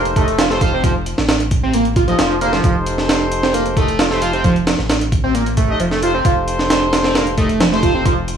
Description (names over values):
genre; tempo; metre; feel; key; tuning
breakbeat, breaks; 133 BPM; 4/4; straight; unclear; A4 = 439 Hz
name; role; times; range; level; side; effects
warm brass ensemble; stabs; 0.0-8.2 s; Eb4 to Eb5; -22 LUFS; left 1 dB; tape echo
saturated sub bass; bass; 0.0-8.3 s; F1 to A1; -23 LUFS; equal; none
breakbeat sampler-style drum kit; drums; 0.1-8.4 s; hi-hat, kick drum, snare drum; -17 LUFS; right 1 dB; none
overdriven synth lead; riff; 0.2-8.1 s; F3 to F4; -18 LUFS; right 2 dB; phaser, tape echo
room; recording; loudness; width
light reverb, digital ambience; dry, gritty hardware recording, vinyl crackle, studio ambience; -13 LUFS; side -8 dB against mid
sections
0.0-8.4 A section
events
none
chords
0.0 F7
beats
0.39 | 0.84 1.29 1.74 2.19 | 2.64 3.09 3.54 4.00 | 4.45 4.90 5.35 5.80 | 6.25 6.70 7.15 7.60 | 8.06